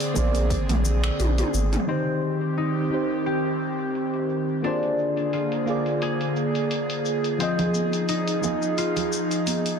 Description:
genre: sunset chillout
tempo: 87 BPM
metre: 4/4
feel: swing 54% on 16ths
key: Eb major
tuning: A4 = 439 Hz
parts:
  - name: warm baby grand piano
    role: melody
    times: 0.0-1.2 s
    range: D5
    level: -44 LUFS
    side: equal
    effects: none
  - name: mellow FM electric piano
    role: accompaniment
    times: 0.0-9.8 s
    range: Eb3 to Eb5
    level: -28 LUFS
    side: moving between left 4 dB and right 5 dB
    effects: chorus, auto-pan, low-pass filter, ping-pong delay
  - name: airy breathy pad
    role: sustained chords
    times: 0.0-9.8 s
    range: D3 to Ab4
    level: -27 LUFS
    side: right 1 dB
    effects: chorus
  - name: deep house drum kit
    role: drums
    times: 0.0-9.8 s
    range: finger snaps, hi-hat, shaker, toms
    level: -31 LUFS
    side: equal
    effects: low-pass filter on perc, low-pass filter on hats, low-pass filter on toms, soft clipping on snare, low-pass filter on snare, low-pass filter on room
  - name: round analog bass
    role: bass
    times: 0.2-1.8 s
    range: Ab1 to Bb1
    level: -23 LUFS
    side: equal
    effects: tube saturation
  - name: electronic kick drum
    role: drums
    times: 0.2-0.7 s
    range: none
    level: -29 LUFS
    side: equal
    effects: none
  - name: congas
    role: percussion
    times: 0.2-1.5, 7.6-9.6 s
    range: none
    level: -32 LUFS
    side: right 6 dB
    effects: none
  - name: concert harp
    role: arpeggios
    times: 1.9-9.8 s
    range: C4 to Ab4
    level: -29 LUFS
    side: left 4 dB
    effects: low-pass filter, ping-pong delay
room: moderate plate reverb, RT60 1.9 s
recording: dense, heavily limited modern master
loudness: -22 LUFS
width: side -6 dB against mid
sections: 0.0-1.9 A section; 1.9-9.8 B section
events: filter sweep on FM electric piano 0.0-1.9; drum fill 1.2-1.9; filter sweep on drum 1.9-9.8; filter sweep on harp 1.9-9.8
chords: 0.0 Bb9; 1.9 Eb6; 4.6 Bb7; 7.4 Fm7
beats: 0.51 1.20 | 1.88 2.57 3.26 3.95 | 4.64 5.33 6.02 6.71 | 7.40 8.09 8.78 9.47

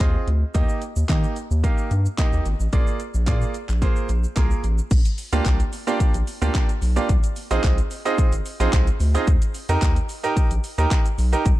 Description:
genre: dance-pop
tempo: 110 BPM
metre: 4/4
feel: straight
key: Eb major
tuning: A4 = 440 Hz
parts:
  - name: bright baby grand piano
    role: accompaniment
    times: 0.0-11.5 s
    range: Bb3 to F5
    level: -26 LUFS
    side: right 4 dB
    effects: sidechain pumping
  - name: round analog bass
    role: bass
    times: 0.0-11.5 s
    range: Ab1 to Eb3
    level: -21 LUFS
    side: equal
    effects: sidechain pumping
  - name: pop drum kit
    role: drums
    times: 0.0-11.6 s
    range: crash cymbal, handclaps, hi-hat, kick drum, shaker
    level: -21 LUFS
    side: equal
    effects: none
room: little or no reverb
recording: dark, warm production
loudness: -19 LUFS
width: side -16 dB against mid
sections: 0.0-4.9 A section; 4.9-11.6 B section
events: none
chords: 0.0 Ab6; 0.5 Eb; 2.7 Bb7; 4.9 Bb6; 7.1 Ab6; 9.3 Eb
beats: 0.00 | 0.55 1.09 1.64 2.18 | 2.73 3.27 3.82 4.37 | 4.91 5.46 6.00 6.55 | 7.09 7.64 8.18 8.73 | 9.27 9.82 10.37 10.91 | 11.46

